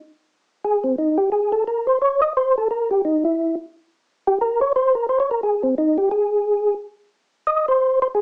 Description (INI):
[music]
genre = jazz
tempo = 175 BPM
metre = 4/4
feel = swing 63% on 8ths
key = unclear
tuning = A4 = 439 Hz
[part]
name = percussive tonewheel organ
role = solo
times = 0.6-8.2 s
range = C4 to Eb5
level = -20 LUFS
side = equal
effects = slow rotary speaker, chorus vibrato
[sound]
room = moderate studio reverb, RT60 0.5 s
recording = small speaker sound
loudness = -20 LUFS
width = mono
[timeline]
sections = 0.0-7.5 A section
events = tonewheel organ solo 0.0-7.5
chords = none